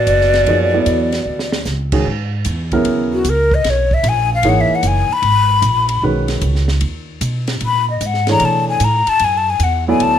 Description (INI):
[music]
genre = modal jazz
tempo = 151 BPM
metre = 4/4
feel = swing 67% on 8ths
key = unclear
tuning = A4 = 440 Hz
[part]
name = breathy mellow jazz flute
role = melody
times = 0.0-10.2 s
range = F#4 to B5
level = -15 LUFS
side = left 4 dB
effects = plate reverb
[part]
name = bright tenor saxophone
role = second line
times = 0.0-1.6 s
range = B2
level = -22 LUFS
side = right 6 dB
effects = none
[part]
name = upright bass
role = bass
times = 0.0-10.2 s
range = F#1 to B2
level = -18 LUFS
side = right 1 dB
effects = none
[part]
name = compact cocktail drum kit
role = drums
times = 0.1-10.1 s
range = crash cymbal, hi-hat, kick drum, ride cymbal, snare drum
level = -25 LUFS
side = right 1 dB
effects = none
[part]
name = warm concert grand piano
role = accompaniment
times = 0.5-10.2 s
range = C#3 to D5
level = -18 LUFS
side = right 2 dB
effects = none
[sound]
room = moderate club reverb, RT60 0.7 s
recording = none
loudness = -13 LUFS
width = side -9 dB against mid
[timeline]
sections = 0.0-2.1 A section; 2.1-10.2 B section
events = drum fill 1.3-1.7; flute solo 2.1-10.2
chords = 0.0 Bm9; 2.1 G#m9; 8.4 Bm9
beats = 0.07 | 0.47 0.86 1.26 1.66 | 2.06 2.46 2.85 3.25 | 3.65 4.04 4.44 4.84 | 5.24 5.63 6.03 6.43 | 6.82 7.22 7.62 8.01 | 8.41 8.81 9.21 9.60 | 10.00